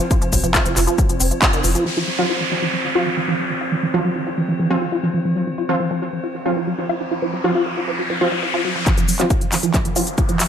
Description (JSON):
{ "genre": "driving peak-time techno", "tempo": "137 BPM", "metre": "4/4", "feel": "straight", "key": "unclear", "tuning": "A4 = 440 Hz", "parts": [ { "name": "resonant blip pluck", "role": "riff", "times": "0.0-10.5 s", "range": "Eb3 to F4", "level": "-22 LUFS", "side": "right 1 dB", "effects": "phaser, tube saturation, sidechain pumping, ping-pong delay" }, { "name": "metallic inharmonic drone", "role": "drone", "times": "0.0-8.9 s", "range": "F3 to C4", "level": "-29 LUFS", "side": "equal", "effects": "chorus, built-in reverb, sidechain pumping" }, { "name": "techno drum kit", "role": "drums", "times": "0.0-1.8, 8.9-10.5 s", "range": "handclaps, hi-hat, shaker", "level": "-21 LUFS", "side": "equal", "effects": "overdrive, low-pass filter on hats, low-pass filter on perc, low-pass filter on snare" }, { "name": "electronic kick drum", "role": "drums", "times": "0.1-1.5, 8.9-10.3 s", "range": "none", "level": "-19 LUFS", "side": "equal", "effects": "none" }, { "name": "saturated sub bass", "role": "bass", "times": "0.2-1.7 s", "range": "F1", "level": "-22 LUFS", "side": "equal", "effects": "overdrive, sidechain pumping, low-pass filter" }, { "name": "downlifter and riser", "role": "sound effects", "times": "1.9-10.5 s", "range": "none", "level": "-26 LUFS", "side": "equal", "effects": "none" }, { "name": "rave stab", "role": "stabs", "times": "2.2-10.0 s", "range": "F3 to F4", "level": "-24 LUFS", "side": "right 1 dB", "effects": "chorus, built-in reverb, sidechain pumping, tape echo" } ], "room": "moderate plate reverb, RT60 1.9 s, digital ambience", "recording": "none", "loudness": "-17 LUFS", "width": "side -8 dB against mid", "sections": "0.0-1.9 A section; 1.9-8.9 B section; 8.9-10.5 C section", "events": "band accent 1.4; filter sweep on synth arpeggio sound 1.9-8.9; filter sweep on synth stab 1.9-8.9, 8.9-10.5; riser 5.4-8.9, 8.9-10.5; build-up 8.9-10.5; drum fill 8.9-10.5", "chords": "0.0 F5" }